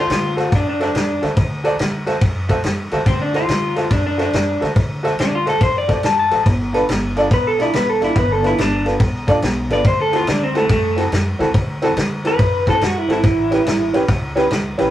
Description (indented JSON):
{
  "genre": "electric blues shuffle",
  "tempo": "142 BPM",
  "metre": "4/4",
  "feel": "swing 66% on 8ths",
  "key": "D mixolydian",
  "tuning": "A4 = 438 Hz",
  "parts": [
    { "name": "electric guitar through a small old amp", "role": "melody", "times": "0.0-13.9 s", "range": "A3 to A5", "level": "-18 LUFS", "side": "left 1 dB", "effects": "none" },
    { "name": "warm upright piano", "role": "accompaniment", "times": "0.0-14.9 s", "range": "C4 to F#5", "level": "-19 LUFS", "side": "right 1 dB", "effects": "none" },
    { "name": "upright bass", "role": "bass", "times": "0.0-14.9 s", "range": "G1 to F#2", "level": "-25 LUFS", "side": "equal", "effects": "none" },
    { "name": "vintage drum kit", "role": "drums", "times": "0.1-14.9 s", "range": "kick drum, ride cymbal, snare drum", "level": "-19 LUFS", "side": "equal", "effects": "none" }
  ],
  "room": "wet booth ambience, RT60 0.2 s",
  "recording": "rough rehearsal-room recording",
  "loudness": "-15 LUFS",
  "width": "side -12 dB against mid",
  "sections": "0.0-14.9 A section",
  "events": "clean electric guitar solo 0.0-14.9",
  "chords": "0.0 D7; 6.5 G7; 9.8 D7; 13.2 A7",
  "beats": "0.10 0.53 0.95 | 1.37 1.80 2.22 2.64 | 3.07 3.49 3.92 4.34 | 4.76 5.19 5.61 6.03 | 6.46 6.88 7.31 7.73 | 8.15 8.58 9.00 9.43 | 9.85 10.27 10.70 11.12 | 11.54 11.97 12.39 12.81 | 13.24 13.66 14.09 14.51"
}